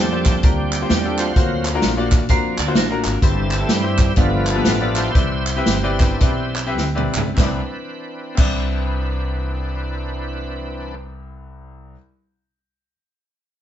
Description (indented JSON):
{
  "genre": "uptempo gospel",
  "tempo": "97-129 BPM",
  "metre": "4/4",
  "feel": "swing 62% on 8ths",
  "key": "C major",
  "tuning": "A4 = 439 Hz",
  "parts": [
    { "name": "bright baby grand piano", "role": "accompaniment", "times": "0.0-12.0 s", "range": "C2 to E5", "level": "-24 LUFS", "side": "left 3 dB", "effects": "none" },
    { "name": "bright tonewheel organ", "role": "sustained chords", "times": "0.0-10.9 s", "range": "B2 to C5", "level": "-24 LUFS", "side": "right 2 dB", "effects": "overdrive, chorus vibrato, slow rotary speaker" },
    { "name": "upright bass", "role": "bass", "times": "0.0-11.9 s", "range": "G1 to G2", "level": "-24 LUFS", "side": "equal", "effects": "none" },
    { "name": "swinging big-band drum kit", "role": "drums", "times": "0.3-8.5 s", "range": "crash cymbal, hi-hat, kick drum, snare drum, toms", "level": "-18 LUFS", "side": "equal", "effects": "none" },
    { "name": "group handclap", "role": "percussion", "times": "0.3-8.5 s", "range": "none", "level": "-29 LUFS", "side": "right 2 dB", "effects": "none" },
    { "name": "clean electric guitar", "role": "second line", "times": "2.3-3.2 s", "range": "D4 to D5", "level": "-26 LUFS", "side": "right 7 dB", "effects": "none" }
  ],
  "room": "moderate studio reverb, RT60 0.8 s",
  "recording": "band playing live in one room, nothing above 7.8 kHz",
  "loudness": "-16 LUFS",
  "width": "side -10 dB against mid",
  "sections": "0.0-7.4 A section; 7.4-12.3 B section",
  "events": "tonewheel organ solo 0.0-7.4; slowing down 3.2-7.4; drum fill 6.8-7.4",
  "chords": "0.0 Bb69; 1.4 D7alt; 3.2 C/G; 4.2 G9; 5.2 Cmaj9"
}